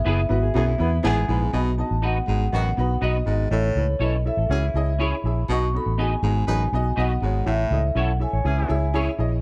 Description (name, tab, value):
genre	soul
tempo	121 BPM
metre	4/4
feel	straight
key	unclear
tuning	A4 = 441 Hz
part	vibraphone with medium mallets	melody	0.0-8.9 s	C#5 to C#6	-31 LUFS	equal	none
part	semi-hollow electric guitar	stabs	0.0-9.1 s	B3 to D#5	-33 LUFS	equal	ensemble chorus
part	vintage muted fingered electric bass	bass	0.0-9.4 s	F#1 to E2	-25 LUFS	equal	none
part	clear upright piano	accompaniment	0.1-9.3 s	B3 to E5	-30 LUFS	equal	none
part	mellow electric guitar	riff	0.3-1.4, 4.4-5.3, 8.3-9.3 s	E4 to C#5	-39 LUFS	equal	spring reverb
part	warm horn section	second line	0.6-8.8 s	D#3 to B4	-35 LUFS	equal	none
part	warm baritone saxophone	riff	0.6-7.8 s	F#2 to B2	-33 LUFS	equal	none
room	studio reverb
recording	dark, warm production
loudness	-23 LUFS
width	mono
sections	0.0-1.5 A section; 1.5-9.4 B section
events	band accent 0.0-1.5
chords	0.0 E; 1.5 B; 3.5 A; 4.5 C#m; 5.5 B; 7.5 A; 8.5 C#m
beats	0.05 0.55 1.04 | 1.54 2.03 2.52 3.02 | 3.51 4.01 4.50 5.00 | 5.49 5.99 6.48 6.97 | 7.47 7.96 8.46 8.95